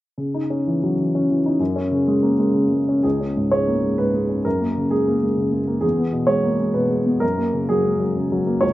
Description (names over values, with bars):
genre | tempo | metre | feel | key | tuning
neoclassical minimalist piano | 128 BPM | 3/4 | rubato | C# dorian | A4 = 441 Hz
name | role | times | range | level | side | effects
dark grand piano | solo | 0.2-8.7 s | C#2 to C#5 | -18 LUFS | equal | none
room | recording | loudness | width
light reverb | recorded outdoors, with no room sound | -18 LUFS | side -16 dB against mid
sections
0.2-3.0 A section; 3.0-8.7 B section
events
none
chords
0.2 C#madd9; 1.6 F#add9; 3.0 C#5; 4.5 F#add9; 5.8 E; 7.2 F#add9